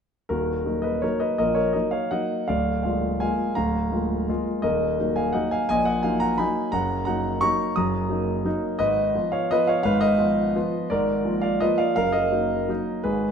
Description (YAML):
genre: classical, piano waltz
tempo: 157-186 BPM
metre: 3/4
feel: rubato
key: Eb minor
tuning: A4 = 440 Hz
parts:
  - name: warm concert grand piano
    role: solo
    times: 0.3-13.3 s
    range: D1 to Eb6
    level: -21 LUFS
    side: equal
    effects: none
room: moderate recital hall reverb, RT60 1.6 s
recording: minimal, uncompressed stereo recording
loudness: -21 LUFS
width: side -7 dB against mid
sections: 0.3-13.3 A section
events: none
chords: 0.3 Ebm; 2.5 Bb7/D; 4.6 Ebm; 6.7 Ebm/Gb; 8.8 Fdim/Ab; 10.9 Bb7/Ab; 12.0 Ebm/Gb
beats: | 0.30 0.66 1.03 | 1.39 1.74 2.12 | 2.49 2.85 3.21 | 3.57 3.92 4.29 | 4.65 5.00 5.35 | 5.69 6.03 6.39 | 6.73 7.07 7.43 | 7.77 8.10 8.46 | 8.80 9.15 9.51 | 9.85 10.19 10.55 | 10.91 11.25 11.61 | 11.97 12.33 12.69 | 13.05